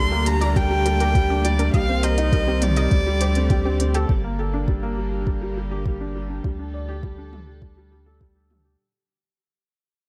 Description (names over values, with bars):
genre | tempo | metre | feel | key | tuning
piano and strings electronica | 102 BPM | 4/4 | straight | G minor | A4 = 435 Hz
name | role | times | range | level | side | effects
rich violin | melody | 0.0-3.8 s | D5 to C6 | -28 LUFS | equal | digital delay
warm studio string section | sustained chords | 0.0-8.8 s | D3 to A4 | -33 LUFS | equal | sidechain pumping, low-pass filter
analog pluck | arpeggios | 0.0-4.0 s | G4 to G5 | -36 LUFS | equal | chorus, sidechain pumping, digital delay
felt-muted upright piano | riff | 0.0-8.8 s | G3 to D5 | -29 LUFS | equal | digital delay
warm sub bass | bass | 0.0-8.8 s | G1 to D2 | -26 LUFS | equal | sidechain pumping
organic electronic drum kit | drums | 0.3-8.6 s | hi-hat, toms | -32 LUFS | equal | none
electronic kick drum | drums | 0.6-8.3 s | none | -24 LUFS | equal | none
room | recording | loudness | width
light reverb, digital ambience | none | -22 LUFS | mono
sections
0.0-4.1 A section; 4.1-8.8 B section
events
drop 0.0-4.1; fade-out 4.1-8.8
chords
0.0 Gmadd9/D; 1.7 Cm7; 2.9 D7sus4; 4.1 Gmadd9; 6.4 Dsus4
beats
0.56 1.15 | 1.74 2.32 2.91 3.50 | 4.09 4.68 5.26 5.85 | 6.44 7.03 7.62 8.21